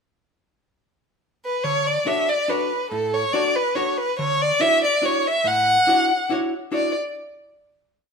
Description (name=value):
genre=musette waltz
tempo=142 BPM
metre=3/4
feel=swing 54% on 8ths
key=D major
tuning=A4 = 440 Hz
part: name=warm violin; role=melody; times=1.5-6.9 s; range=A4 to F#5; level=-19 LUFS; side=equal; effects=none
part: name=archtop guitar, miked and amplified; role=accompaniment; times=1.6-6.9 s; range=A2 to C#5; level=-26 LUFS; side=left 1 dB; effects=none
room=moderate stone room reverb, RT60 1.0 s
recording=band playing live in one room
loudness=-18 LUFS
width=side -5 dB against mid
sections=0.4-1.6 pickup bar; 1.6-6.7 A section; 6.7-8.0 final chord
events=none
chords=0.4 N.C.; 1.6 Dmaj7; 4.2 Dmaj9